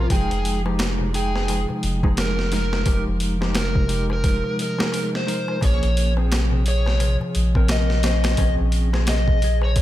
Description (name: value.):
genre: trip hop.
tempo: 87 BPM.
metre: 4/4.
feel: swing 60% on 16ths.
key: F minor.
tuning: A4 = 440 Hz.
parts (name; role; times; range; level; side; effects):
overdriven slide guitar; melody; 0.0-9.8 s; Ab4 to Eb5; -27 LUFS; right 1 dB; tape echo.
mellow electric guitar; accompaniment; 0.0-9.8 s; C3 to G5; -28 LUFS; equal; tremolo, tape echo.
concert harp; arpeggios; 0.0-9.8 s; C3 to F4; -29 LUFS; equal; tape echo.
soft dub sub bass; bass; 0.0-9.8 s; F1 to Bb1; -22 LUFS; equal; none.
boom bap sampler-style drum kit; drums; 0.1-9.8 s; hi-hat, kick drum, snare drum; -24 LUFS; equal; none.
darbuka; percussion; 0.1-9.8 s; none; -35 LUFS; left 3 dB; none.
room: digital ambience.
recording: none.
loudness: -18 LUFS.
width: side -14 dB against mid.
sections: 0.0-9.8 A section.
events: none.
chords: 0.1 Fm7; 5.6 Bbm7.